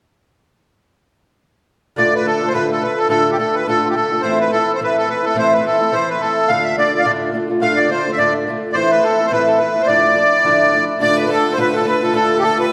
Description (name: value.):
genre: celtic folk, Celtic reel.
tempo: 212 BPM.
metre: 4/4.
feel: swing 57% on 8ths.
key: D dorian.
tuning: A4 = 442 Hz.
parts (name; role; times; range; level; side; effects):
accordion; melody; 2.0-12.7 s; F4 to F5; -18 LUFS; equal; light tremolo tuning.
fingerpicked old ladder-braced acoustic guitar; accompaniment; 2.0-12.7 s; D2 to F4; -20 LUFS; equal; none.
clear fiddle; second line; 11.0-12.7 s; A4 to D5; -27 LUFS; equal; none.
room: wet scoring stage reverb, RT60 1.7 s.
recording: recorded in a church or concert hall.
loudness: -16 LUFS.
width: mono.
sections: 2.0-11.0 A section; 11.0-12.7 A section.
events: none.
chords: 2.0 Dm; 4.2 Am; 6.5 Dm; 8.8 Am; 9.9 Dmadd9; 11.0 Dm.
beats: | 1.97 2.25 2.54 2.82 | 3.10 3.38 3.67 3.95 | 4.23 4.51 4.80 5.08 | 5.36 5.64 5.93 6.21 | 6.49 6.78 7.06 7.34 | 7.62 7.91 8.19 8.47 | 8.76 9.04 9.32 9.60 | 9.89 10.17 10.45 10.73 | 11.02 11.30 11.58 11.86 | 12.14 12.43 12.71.